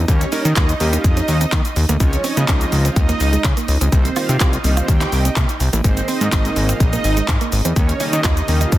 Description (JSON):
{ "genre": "dance-pop", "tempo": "125 BPM", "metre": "4/4", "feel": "straight", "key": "Ab major", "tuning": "A4 = 440 Hz", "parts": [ { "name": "direct-recorded clean electric guitar", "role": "riff", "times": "0.0-8.7 s", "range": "Ab3 to G4", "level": "-27 LUFS", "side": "right 7 dB", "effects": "analog chorus" }, { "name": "fat analog bass", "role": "bass", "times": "0.0-8.8 s", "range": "Ab1 to Eb3", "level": "-18 LUFS", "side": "equal", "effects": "sidechain pumping" }, { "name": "clear concert grand piano", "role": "accompaniment", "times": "0.1-8.8 s", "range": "Eb3 to Bb4", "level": "-27 LUFS", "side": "equal", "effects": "sidechain pumping" }, { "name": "pop drum kit", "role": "drums", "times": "0.1-8.8 s", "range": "handclaps, hi-hat, kick drum, shaker", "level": "-18 LUFS", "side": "equal", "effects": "none" }, { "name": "chorused pulse-width pad", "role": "sustained chords", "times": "5.8-8.8 s", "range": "Db3 to Eb5", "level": "-30 LUFS", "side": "equal", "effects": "none" } ], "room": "little or no reverb", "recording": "dense, heavily limited modern master", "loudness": "-14 LUFS", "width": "side -15 dB against mid", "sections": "0.0-8.8 A section", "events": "none", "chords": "0.1 Eb7; 2.0 Dbmaj7; 3.9 Cm7; 5.8 Abadd9; 7.8 Eb7" }